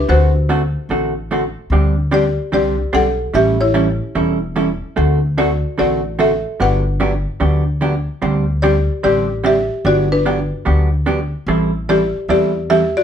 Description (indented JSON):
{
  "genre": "country, western swing",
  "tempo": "148 BPM",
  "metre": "4/4",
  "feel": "swing 65% on 8ths",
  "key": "unclear",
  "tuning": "A4 = 439 Hz",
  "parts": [
    { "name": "buzzing marimba with medium mallets", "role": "melody", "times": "0.0-13.0 s", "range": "D4 to F#5", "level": "-17 LUFS", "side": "left 1 dB", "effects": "none" },
    { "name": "upright bass", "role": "bass", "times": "0.0-12.9 s", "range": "E1 to E2", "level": "-18 LUFS", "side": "equal", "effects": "none" },
    { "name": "vintage hollow-body jazz guitar", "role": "accompaniment", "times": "0.1-12.8 s", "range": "D3 to A4", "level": "-19 LUFS", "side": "right 2 dB", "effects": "none" }
  ],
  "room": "wet studio reverb, RT60 0.7 s",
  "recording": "band playing live in one room",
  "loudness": "-14 LUFS",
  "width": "side -8 dB against mid",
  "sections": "0.0-13.0 A section",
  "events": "none",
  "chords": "0.1 D7; 1.7 D7sus4; 3.3 A7; 5.0 D7; 6.6 Gmaj7; 8.2 D7sus4; 9.8 Gmaj7; 11.5 Am7",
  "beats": "| 0.08 0.49 0.90 1.30 | 1.71 2.12 2.53 2.93 | 3.34 3.75 4.15 4.56 | 4.97 5.38 5.78 6.19 | 6.59 7.00 7.41 7.82 | 8.22 8.63 9.04 9.44 | 9.85 10.26 10.66 11.07 | 11.48 11.88 12.29 12.70"
}